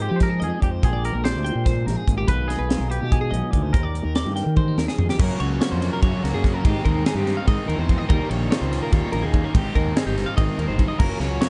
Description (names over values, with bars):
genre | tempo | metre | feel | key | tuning
math rock and midwest emo | 289 BPM (eighths) | 7/8 | straight | unclear | A4 = 440 Hz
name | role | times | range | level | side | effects
twangy electric guitar | melody | 0.0-4.7 s | G4 to C5 | -34 LUFS | equal | none
twelve-string electric guitar | accompaniment | 0.0-11.5 s | Eb2 to Bb4 | -33 LUFS | equal | spring reverb
twelve-string electric guitar | arpeggios | 0.0-11.5 s | G4 to G5 | -32 LUFS | equal | none
fuzz fingered electric bass | bass | 0.0-11.4 s | Gb1 to F3 | -27 LUFS | equal | overdrive
crisp fusion drum kit | drums | 0.2-11.5 s | crash cymbal, hi-hat, kick drum, ride cymbal, snare drum, toms | -24 LUFS | equal | none
biting overdriven guitar | riff | 5.2-11.5 s | Eb2 to Gb4 | -32 LUFS | equal | none
room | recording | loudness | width
little or no reverb | dark, warm production, nothing above 10.3 kHz | -22 LUFS | mono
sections
0.0-5.2 A section; 5.2-11.5 B section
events
drum fill 4.6-5.2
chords
0.0 Fm9; 0.8 Bb13; 2.3 Abm6/Cb; 3.7 Ebmaj9; 5.2 Gb; 6.6 Abmaj7; 8.1 Eb7; 9.5 Abmaj7